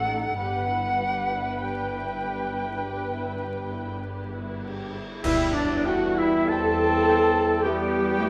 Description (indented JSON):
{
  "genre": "classical, slow romantic movement for symphony orchestra",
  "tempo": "46-56 BPM",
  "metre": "4/4",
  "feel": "rubato",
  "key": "E minor",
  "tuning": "A4 = 439 Hz",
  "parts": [
    { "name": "muted studio violin section", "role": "melody", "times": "0.0-8.3 s", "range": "D#4 to G5", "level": "-41 LUFS", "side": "equal", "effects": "none" },
    { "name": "muted studio violin section", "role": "second line", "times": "0.0-8.3 s", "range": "B4 to G5", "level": "-42 LUFS", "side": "equal", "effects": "none" },
    { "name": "silver concert flute", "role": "second line", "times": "0.0-8.3 s", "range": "D5 to A5", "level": "-32 LUFS", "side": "equal", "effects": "none" },
    { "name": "muted studio viola section", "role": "accompaniment", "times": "0.0-8.3 s", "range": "D4 to B4", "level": "-30 LUFS", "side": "equal", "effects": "none" },
    { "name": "muted studio cello section", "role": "bass", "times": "0.0-8.3 s", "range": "G2 to A3", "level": "-37 LUFS", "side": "equal", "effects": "none" },
    { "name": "muted studio double bass section", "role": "bass", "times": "0.0-8.3 s", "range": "G1 to E2", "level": "-36 LUFS", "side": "equal", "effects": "none" },
    { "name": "cymbal swell, clash cymbals and concert bass drum", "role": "percussion", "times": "0.4-7.6 s", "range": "none", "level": "-38 LUFS", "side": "equal", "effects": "none" },
    { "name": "mellow clarinet", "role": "second line", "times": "5.2-8.3 s", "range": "D4 to A4", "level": "-31 LUFS", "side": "equal", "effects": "none" },
    { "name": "warm oboe", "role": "second line", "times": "5.2-8.3 s", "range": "D5 to A5", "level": "-33 LUFS", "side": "equal", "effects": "none" },
    { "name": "dark trombone section", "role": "sustained chords", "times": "5.2-8.3 s", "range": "E3 to G3", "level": "-34 LUFS", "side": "equal", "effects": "none" },
    { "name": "warm French horn section", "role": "sustained chords", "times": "5.2-8.3 s", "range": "B3 to E4", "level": "-33 LUFS", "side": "equal", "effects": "none" },
    { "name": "mellow trumpet", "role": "stabs", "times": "5.2-8.3 s", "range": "F#3 to C4", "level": "-32 LUFS", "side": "equal", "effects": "none" }
  ],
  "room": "moderate scoring stage reverb, RT60 1.9 s",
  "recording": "vinyl crackle",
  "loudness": "-25 LUFS",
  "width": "mono",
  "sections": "0.0-5.2 A section; 5.2-8.3 A section",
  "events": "band accent 5.2-6.5",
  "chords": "0.4 Em/G; 5.2 Em",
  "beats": "| 0.37 1.63 2.82 4.02 | 5.24 6.49 7.64"
}